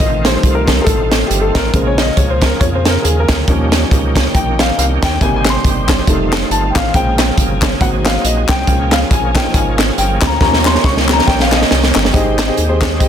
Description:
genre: uptempo gospel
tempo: 138 BPM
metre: 4/4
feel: swing 57% on 8ths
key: Ab major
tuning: A4 = 440 Hz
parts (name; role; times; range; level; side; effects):
- warm upright piano; accompaniment; 0.0-13.1 s; Ab2 to Db6; -18 LUFS; left 2 dB; none
- bright tonewheel organ; sustained chords; 0.0-13.1 s; Db3 to Ab4; -22 LUFS; right 4 dB; slow rotary speaker, overdrive, chorus vibrato
- rubbery square bass; bass; 0.0-13.1 s; F1 to F2; -17 LUFS; equal; none
- crisp fusion drum kit; drums; 0.0-13.1 s; hi-hat, kick drum, snare drum; -14 LUFS; equal; none
- group handclap; percussion; 5.5-12.9 s; none; -24 LUFS; left 8 dB; none
room: light reverb, small room reverb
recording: dense, heavily limited modern master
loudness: -11 LUFS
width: side -9 dB against mid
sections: 0.0-12.1 A section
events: upright piano solo 0.0-12.1; drum fill 10.4-12.1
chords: 0.0 F7/A; 1.7 Bbm7; 3.5 Eb7; 5.2 Abmaj7; 6.1 F7; 6.9 Bbm7; 7.8 Ab7; 8.7 Db6; 10.4 Eb7; 12.1 Abmaj7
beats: | 0.00 0.43 0.87 1.30 | 1.74 2.17 2.61 3.04 | 3.48 3.91 4.34 4.78 | 5.21 5.65 6.08 6.51 | 6.95 7.38 7.81 8.25 | 8.68 9.11 9.55 9.98 | 10.41 10.84 11.28 11.71 | 12.14 12.58 13.01

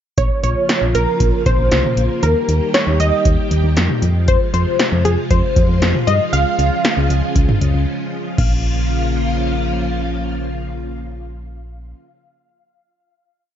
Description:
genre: synth-pop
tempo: 117 BPM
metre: 4/4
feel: straight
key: Bb dorian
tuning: A4 = 440 Hz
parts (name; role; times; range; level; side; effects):
- funky polysynth comp; melody; 0.2-11.9 s; Ab4 to F5; -20 LUFS; equal; chorus, tape echo
- string machine, violins; sustained chords; 0.2-11.9 s; C3 to G4; -22 LUFS; equal; ensemble chorus
- solid FM bass; bass; 0.2-11.9 s; Bb1 to G2; -18 LUFS; equal; none
- electro analog drum machine; drums; 0.2-8.5 s; crash cymbal, hi-hat, kick drum, snare drum, toms; -18 LUFS; equal; none
room: light reverb, digital ambience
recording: dark, warm production, nothing above 7.5 kHz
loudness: -14 LUFS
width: side -10 dB against mid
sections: 0.2-8.4 verse; 8.4-12.5 final chord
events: break 7.9-8.4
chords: 0.2 Bbm; 2.2 Eb; 4.0 Fm; 6.3 Db; 8.4 Bbm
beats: | 0.18 0.69 1.20 1.72 | 2.23 2.74 3.25 3.77 | 4.28 4.79 5.31 5.82 | 6.33 6.84 7.36 7.87 | 8.38 8.90 9.41 9.92 | 10.43 10.95 11.46

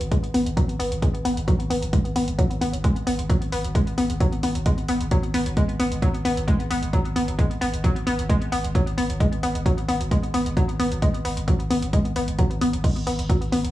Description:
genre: driving peak-time techno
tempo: 132 BPM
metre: 4/4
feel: straight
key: G# minor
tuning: A4 = 440 Hz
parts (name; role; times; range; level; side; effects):
- saturated sub bass; bass; 0.0-13.7 s; G#1; -30 LUFS; equal; overdrive, sidechain pumping, low-pass filter
- punchy analog drum machine; drums; 0.0-13.7 s; crash cymbal, hi-hat; -36 LUFS; equal; cassette tape
- analog pluck; riff; 0.1-13.6 s; F#3 to B3; -25 LUFS; equal; chorus, sidechain pumping, cassette tape, tape echo
- electronic kick drum; drums; 0.1-13.4 s; none; -23 LUFS; equal; cassette tape
room: light reverb, digital ambience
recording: home recording on cassette, small room ambience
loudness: -20 LUFS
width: side -15 dB against mid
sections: 0.0-13.7 A section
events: none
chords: 0.0 G#m7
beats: | 0.11 0.57 1.02 1.48 | 1.93 2.39 2.84 3.30 | 3.75 4.21 4.66 5.11 | 5.57 6.02 6.48 6.93 | 7.39 7.84 8.30 8.75 | 9.21 9.66 10.11 10.57 | 11.02 11.48 11.93 12.39 | 12.84 13.30

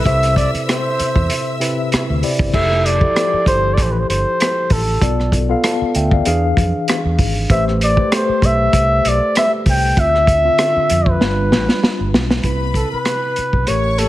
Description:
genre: lush 1970s-style soul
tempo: 97 BPM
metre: 4/4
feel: swing 54% on 16ths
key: C major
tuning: A4 = 441 Hz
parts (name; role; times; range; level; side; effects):
- warm flugelhorn; melody; 0.0-14.1 s; A4 to G5; -17 LUFS; equal; slapback echo
- rich symphonic string section; second line; 0.0-2.2, 12.4-14.1 s; B4 to E6; -26 LUFS; left 2 dB; none
- tine electric piano; accompaniment; 0.0-14.1 s; C3 to A5; -21 LUFS; left 2 dB; medium stereo tremolo
- overdriven fingered electric bass; bass; 0.0-14.1 s; F1 to F2; -19 LUFS; equal; none
- vintage drum kit; drums; 0.1-14.1 s; crash cymbal, hi-hat, kick drum, rim click, snare drum; -18 LUFS; equal; none
room: light reverb, small room reverb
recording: none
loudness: -13 LUFS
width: side -15 dB against mid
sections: 0.0-2.5 A section; 2.5-12.4 B section; 12.4-14.1 A section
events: drum fill 11.2-12.4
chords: 0.0 Cmaj7; 2.5 Fmaj9; 5.0 Bm7b5; 6.3 E7b9; 7.5 Am9; 10.0 Dm9; 11.2 G7; 12.4 Cmaj7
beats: | 0.05 0.67 1.30 1.92 | 2.54 3.16 3.78 4.40 | 5.02 5.64 6.26 6.88 | 7.50 8.12 8.73 9.35 | 9.97 10.59 11.21 11.82 | 12.44 13.06 13.68

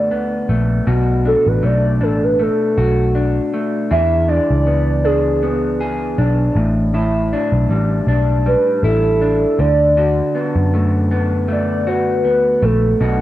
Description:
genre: indie pop, bedroom pop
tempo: 79 BPM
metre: 4/4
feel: swing 55% on 16ths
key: D major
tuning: A4 = 440 Hz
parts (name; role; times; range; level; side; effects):
- hollow clarinet-like synth lead; melody; 0.0-13.2 s; G#4 to E5; -18 LUFS; right 1 dB; analog chorus, analog delay
- electric guitar through a small old amp; accompaniment; 0.0-13.2 s; A2 to G#4; -19 LUFS; left 1 dB; wide subtle chorus, warbly pitch drift
- vintage muted picked electric bass; bass; 0.0-13.2 s; A1 to F#2; -17 LUFS; equal; tube saturation
- phased analog pad; sustained chords; 13.1-13.2 s; B2 to D4; -27 LUFS; equal; none
room: moderate spring reverb, RT60 2.1 s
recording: home recording on cassette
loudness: -14 LUFS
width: side -14 dB against mid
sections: 0.9-13.2 A section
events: soft synth lead solo 0.9-13.2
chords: 0.0 D6; 0.9 Bm7; 3.9 E7; 6.6 A7sus4; 9.6 D6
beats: 0.11 | 0.87 1.63 2.39 3.15 | 3.91 4.67 5.43 6.19 | 6.95 7.70 8.46 9.22 | 9.98 10.74 11.50 12.25 | 13.01

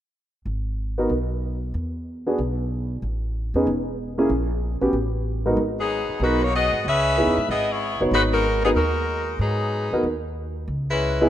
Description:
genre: jazz, big band swing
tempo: 188 BPM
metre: 4/4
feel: swing 63% on 8ths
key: G# minor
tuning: A4 = 440 Hz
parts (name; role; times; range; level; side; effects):
- upright bass; bass; 0.5-11.3 s; E1 to G#2; -26 LUFS; equal; none
- warm grand piano; accompaniment; 1.0-11.3 s; G#2 to C#5; -23 LUFS; right 1 dB; none
- edgy saxophone section; melody; 5.8-11.3 s; F#3 to E5; -22 LUFS; left 2 dB; none
room: moderate lush hall reverb, RT60 2.3 s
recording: rough home demo mix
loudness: -21 LUFS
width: side -11 dB against mid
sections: 0.5-5.6 A section; 5.6-11.3 B section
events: none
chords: 0.5 G#m; 1.7 E5; 3.0 Amaj7; 4.3 A#m6; 4.9 Asus2; 5.6 G#m7; 6.8 C#m7; 8.1 G#m7; 10.7 C#m7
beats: | 0.47 0.78 1.10 1.42 | 1.74 2.06 2.38 2.70 | 3.02 3.34 3.66 3.97 | 4.29 4.61 4.93 5.25 | 5.57 5.89 6.21 6.53 | 6.84 7.16 7.48 7.80 | 8.12 8.44 8.76 9.08 | 9.40 9.72 10.04 10.36 | 10.68 11.00

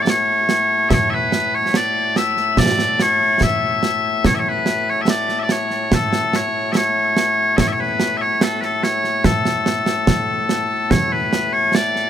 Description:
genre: scottish traditional, Scottish pipe music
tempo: 72 BPM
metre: 2/4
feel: straight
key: A major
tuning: A4 = 438 Hz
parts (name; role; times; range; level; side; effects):
- loud bright bagpipes; melody; 0.0-12.1 s; A2 to E5; -17 LUFS; left 2 dB; none
- concert snare drum and concert bass drum; drums; 0.1-12.1 s; none; -20 LUFS; right 2 dB; none
room: light reverb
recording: none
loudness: -15 LUFS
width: side -10 dB against mid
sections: 0.0-10.9 A section; 10.9-12.1 A section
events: none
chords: none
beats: 0.08 | 0.91 1.75 | 2.58 3.41 | 4.25 5.08 | 5.91 6.75 | 7.58 8.41 | 9.24 10.08 | 10.91 11.74

